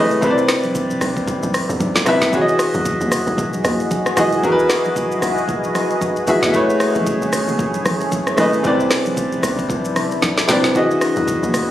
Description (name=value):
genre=amapiano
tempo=114 BPM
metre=4/4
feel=swing 58% on 16ths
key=E major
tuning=A4 = 438 Hz
part: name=warm grand piano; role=accompaniment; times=0.0-11.7 s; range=C3 to E5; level=-17 LUFS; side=equal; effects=none
part: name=tight log drum bass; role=bass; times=0.0-11.7 s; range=F#1 to E2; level=-26 LUFS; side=equal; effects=none
part: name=deep house drum kit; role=drums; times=0.1-11.7 s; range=hi-hat, kick drum, rim click, shaker, snare drum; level=-22 LUFS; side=equal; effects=none
part: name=congas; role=percussion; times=0.6-11.7 s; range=none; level=-28 LUFS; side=right 1 dB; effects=none
part: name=deep dark ambient pad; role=sustained chords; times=3.2-11.7 s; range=C3 to D#5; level=-24 LUFS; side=left 1 dB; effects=chorus, built-in reverb, sidechain pumping
room=light reverb, digital ambience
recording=recorded on a phone in the room, club reverb, compression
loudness=-15 LUFS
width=side -12 dB against mid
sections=0.0-11.7 A section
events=drum fill 10.2-10.8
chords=0.2 Cmaj9; 2.3 Emaj9; 6.5 Amaj9; 8.6 Cmaj9; 10.8 Emaj9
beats=| 0.22 0.75 1.28 1.80 | 2.33 2.85 3.38 3.91 | 4.43 4.96 5.49 6.01 | 6.54 7.07 7.59 8.12 | 8.64 9.17 9.70 10.22 | 10.75 11.28